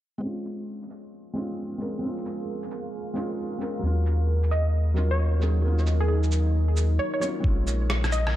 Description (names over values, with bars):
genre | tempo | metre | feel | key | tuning
future garage | 133 BPM | 4/4 | swing 64% on 16ths | Bb minor | A4 = 444 Hz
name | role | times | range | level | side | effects
felt-muted upright piano | accompaniment | 0.2-8.4 s | Gb3 to Bb4 | -32 LUFS | equal | sidechain pumping, analog delay
deep dark ambient pad | sustained chords | 1.7-8.4 s | Gb3 to F5 | -34 LUFS | equal | chorus, built-in reverb, sidechain pumping
electronic shaker and rim click | drums | 0.5-8.3 s | none | -34 LUFS | right 1 dB | none
warm sub bass | bass | 3.8-8.4 s | Bb1 to Eb2 | -22 LUFS | equal | sidechain pumping
glassy wavetable pluck | melody | 4.5-8.4 s | Ab4 to Eb5 | -31 LUFS | right 1 dB | chorus, analog delay
electronic kick drum | drums | 7.4-7.6 s | none | -23 LUFS | equal | none
room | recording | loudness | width
light reverb | dark, warm production, low-pass filter | -23 LUFS | side -13 dB against mid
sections
0.2-7.4 A section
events
filter sweep 0.2-7.4; break 7.0-7.4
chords
0.2 Bbm7; 3.8 Ebm7; 7.4 Bbm7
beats
| 0.22 0.67 1.12 1.58 | 2.03 2.48 2.93 3.38 | 3.83 4.28 4.73 5.18 | 5.64 6.09 6.54 6.99 | 7.44 7.89 8.34